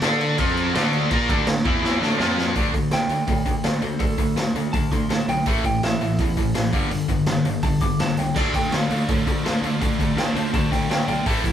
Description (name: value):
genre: punk rock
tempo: 165 BPM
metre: 4/4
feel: straight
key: unclear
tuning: A4 = 443 Hz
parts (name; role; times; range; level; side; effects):
- distorted electric guitar; riff; 0.0-11.5 s; G2 to D5; -25 LUFS; left 6 dB; distortion
- distorted electric guitar; riff; 0.0-11.5 s; G2 to D5; -27 LUFS; right 7 dB; overdrive
- distorted electric guitar; riff; 0.0-2.5, 8.3-11.5 s; A2 to D5; -28 LUFS; right 1 dB; overdrive
- fuzz picked electric bass; bass; 0.0-11.5 s; G1 to D3; -29 LUFS; right 1 dB; overdrive
- raw garage drum kit; drums; 0.0-11.5 s; crash cymbal, hi-hat, kick drum, snare drum; -24 LUFS; equal; none
- lightly driven lead guitar; melody; 2.9-11.5 s; A4 to D6; -28 LUFS; right 1 dB; none
room: light reverb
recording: band playing live in one room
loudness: -19 LUFS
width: side -10 dB against mid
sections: 0.0-2.6 A section; 2.6-11.5 B section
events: drum fill 1.8-2.6; lead electric guitar solo 2.6-11.5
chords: 0.4 F5; 0.7 D5; 2.2 F5; 2.6 D5; 5.5 A5; 6.7 G5; 8.4 Dm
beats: 0.02 0.38 0.74 | 1.11 1.47 1.83 2.19 | 2.56 2.92 3.28 3.64 | 4.00 4.37 4.73 5.09 | 5.46 5.82 6.18 6.55 | 6.91 7.27 7.63 8.00 | 8.36 8.72 9.09 9.45 | 9.81 10.18 10.54 10.90 | 11.26